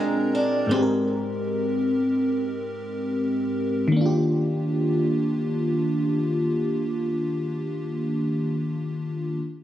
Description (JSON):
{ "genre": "R&B", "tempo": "free time", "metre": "none", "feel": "none", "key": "Eb major", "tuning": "A4 = 440 Hz", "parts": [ { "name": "FM electric piano with soft pad layer", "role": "accompaniment", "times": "0.0-9.4 s", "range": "Ab2 to Bb4", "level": "-22 LUFS", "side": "equal", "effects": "chorus" }, { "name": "picked swing-style acoustic guitar", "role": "arpeggios", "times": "0.0-1.6 s", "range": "Ab2 to D4", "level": "-27 LUFS", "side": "right 1 dB", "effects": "ping-pong delay" } ], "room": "light reverb", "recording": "recorded on a phone in the room, studio reverb, compression", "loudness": "-22 LUFS", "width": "side -12 dB against mid", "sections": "0.0-4.0 A section; 4.0-6.9 B section", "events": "none", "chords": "0.0 Bb9; 0.7 Abmaj7; 4.0 Ebmaj7", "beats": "free time" }